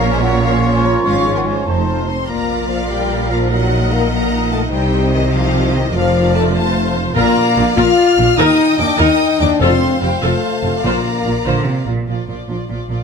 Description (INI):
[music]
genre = cinematic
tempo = 98 BPM (dotted quarters)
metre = 6/8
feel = straight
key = Bb major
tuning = A4 = 443 Hz
[part]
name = warm symphonic violin section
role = melody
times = 0.0-13.0 s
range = F4 to F6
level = -24 LUFS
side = left 3 dB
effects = none
[part]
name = mellow hollow silver concert flute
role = second line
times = 0.0-2.3 s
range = F5 to Db6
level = -25 LUFS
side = left 3 dB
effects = none
[part]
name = rich symphonic violin section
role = second line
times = 0.0-13.0 s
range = F4 to G5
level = -24 LUFS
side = left 1 dB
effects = none
[part]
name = warm clarinet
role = second line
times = 0.0-2.1 s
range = Eb4 to F4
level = -24 LUFS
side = left 2 dB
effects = none
[part]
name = warm oboe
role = second line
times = 0.0-2.1 s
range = C5 to Db5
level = -25 LUFS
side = right 2 dB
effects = none
[part]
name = warm symphonic viola section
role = accompaniment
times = 0.0-13.0 s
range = F3 to C5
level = -22 LUFS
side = equal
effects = none
[part]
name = clear trombone section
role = sustained chords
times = 0.0-2.1, 12.5-12.6 s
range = F3 to Eb4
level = -25 LUFS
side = right 5 dB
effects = none
[part]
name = dark trumpet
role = stabs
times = 0.0-2.1 s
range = C5 to Db5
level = -24 LUFS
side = left 1 dB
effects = none
[part]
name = rich symphonic cello section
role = bass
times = 0.0-13.0 s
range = Eb2 to D3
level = -21 LUFS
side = right 2 dB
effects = none
[part]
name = warm symphonic double bass section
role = bass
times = 0.0-13.0 s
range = F1 to Eb2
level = -20 LUFS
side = right 3 dB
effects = none
[part]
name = mellow French horn section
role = sustained chords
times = 0.1-11.9 s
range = Eb3 to F4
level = -17 LUFS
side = left 4 dB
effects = none
[part]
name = timpani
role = percussion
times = 7.2-11.4 s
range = F2 to Bb2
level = -24 LUFS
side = left 2 dB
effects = none
[sound]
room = moderate scoring stage reverb, RT60 1.6 s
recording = none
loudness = -13 LUFS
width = side -6 dB against mid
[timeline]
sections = 0.0-2.3 A section; 2.3-12.1 B section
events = none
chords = 0.0 Bbm; 1.1 Db/Ab; 1.7 F7; 2.3 Bb; 3.5 Ebm/Bb; 4.7 Cm; 5.9 Bb/F; 6.6 F; 7.2 Bb; 8.4 Eb; 9.6 F; 10.8 Bbadd9; 12.1 Bb